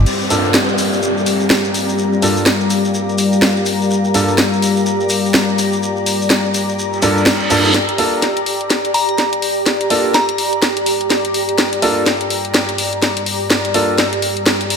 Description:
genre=bass house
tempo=125 BPM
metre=4/4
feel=swing 60% on 16ths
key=G minor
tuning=A4 = 443 Hz
part: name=dark analog pad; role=sustained chords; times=0.0-14.8 s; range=G3 to F5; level=-20 LUFS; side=left 3 dB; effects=chorus
part: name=granular cloud pad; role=texture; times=0.0-14.8 s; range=C4 to Bb5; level=-20 LUFS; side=equal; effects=built-in reverb
part: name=garage drum kit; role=drums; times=0.1-14.8 s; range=crash cymbal, hi-hat, snare drum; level=-17 LUFS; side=equal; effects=none
part: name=shekere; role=percussion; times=0.1-7.7 s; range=none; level=-26 LUFS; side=left 1 dB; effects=none
part: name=downlifter and reverse cymbal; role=sound effects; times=0.1-3.9, 7.0-7.7 s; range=none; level=-21 LUFS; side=right 1 dB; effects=none
part: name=clear grand piano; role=stabs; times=0.3-14.0 s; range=G2 to A4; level=-19 LUFS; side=right 1 dB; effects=low-pass filter, dub echo
part: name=glassy synth bell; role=melody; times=8.9-10.8 s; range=Bb5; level=-20 LUFS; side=right 1 dB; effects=chorus, tremolo, dub echo
room=moderate lush hall reverb, RT60 2.1 s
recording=none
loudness=-13 LUFS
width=side -6 dB against mid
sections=0.1-7.7 A section; 7.7-14.8 B section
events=filter sweep on grand piano 0.1-7.7; reverse cymbal 7.0-7.7; build-up 7.7-14.8; drum fill 7.7-14.8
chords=0.1 Gm7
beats=| 0.06 0.54 1.02 1.50 | 1.98 2.46 2.94 3.42 | 3.90 4.38 4.86 5.34 | 5.82 6.30 6.78 7.26 | 7.74 8.22 8.70 9.18 | 9.66 10.14 10.62 11.10 | 11.58 12.06 12.54 13.02 | 13.50 13.98 14.46

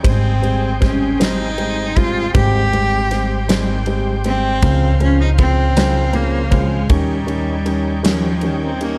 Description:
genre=six-eight pop ballad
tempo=53 BPM (dotted quarters)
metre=6/8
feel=straight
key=Ab major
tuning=A4 = 441 Hz
part: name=dark baby grand piano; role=accompaniment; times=0.0-9.0 s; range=Db3 to Db4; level=-24 LUFS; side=equal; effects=none
part: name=overdriven tonewheel organ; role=sustained chords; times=0.0-9.0 s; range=Db3 to G5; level=-31 LUFS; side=equal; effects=chorus vibrato, lush chorus
part: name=upright bass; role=bass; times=0.0-9.0 s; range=Ab1 to Eb2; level=-21 LUFS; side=equal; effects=none
part: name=huge arena drum kit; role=drums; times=0.0-9.0 s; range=kick drum, ride cymbal, snare drum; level=-22 LUFS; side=equal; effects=none
part: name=rich cello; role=melody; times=0.1-9.0 s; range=Eb3 to G4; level=-23 LUFS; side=equal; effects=none
room=small room reverb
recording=dark, warm production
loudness=-17 LUFS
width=mono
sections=0.0-9.0 A section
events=none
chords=0.0 Abmaj7; 4.6 Dbmaj7; 6.9 Eb7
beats=| 0.05 1.20 | 2.35 3.49 | 4.63 5.76 | 6.90 8.04

